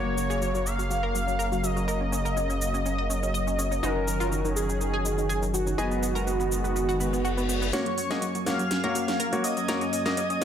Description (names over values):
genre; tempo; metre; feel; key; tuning
progressive house; 123 BPM; 4/4; straight; unclear; A4 = 440 Hz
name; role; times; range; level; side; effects
wide unison lead; melody; 0.0-10.4 s; F#4 to E#5; -30 LUFS; right 1 dB; wide subtle chorus, digital delay
filtered supersaw swell; sustained chords; 0.0-10.4 s; F#2 to C#4; -33 LUFS; equal; low-pass filter
clear concert grand piano; stabs; 0.0-10.4 s; F#3 to D#5; -33 LUFS; left 2 dB; low-pass filter, digital delay
round analog bass; bass; 0.0-7.7 s; F#1; -30 LUFS; equal; none
analog pluck; arpeggios; 0.1-10.4 s; D#3 to D#5; -33 LUFS; equal; analog chorus, digital delay
house drum kit; drums; 0.2-10.4 s; hi-hat, shaker, snare drum; -34 LUFS; equal; overdrive
reverse cymbal; sound effects; 7.1-7.7 s; none; -35 LUFS; left 5 dB; none
airy dreamy lead; second line; 7.7-10.4 s; C#6 to E#6; -35 LUFS; equal; chorus, phaser, digital delay
drifting glass-harmonics texture; texture; 8.2-10.4 s; G#5 to G#6; -41 LUFS; right 3 dB; chorus, built-in reverb
room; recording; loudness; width
light reverb, digital ambience; none; -24 LUFS; side -9 dB against mid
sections
0.0-7.7 A section; 7.7-10.4 B section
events
reverse cymbal 7.1-7.7; build-up 7.7-10.4; drum fill 7.7-10.4; filter sweep on grand piano 7.7-10.4; filter sweep on supersaw synth 7.7-10.4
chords
0.0 F#; 3.8 D#m7/F#; 5.8 B6/F#; 7.7 D#m7/F#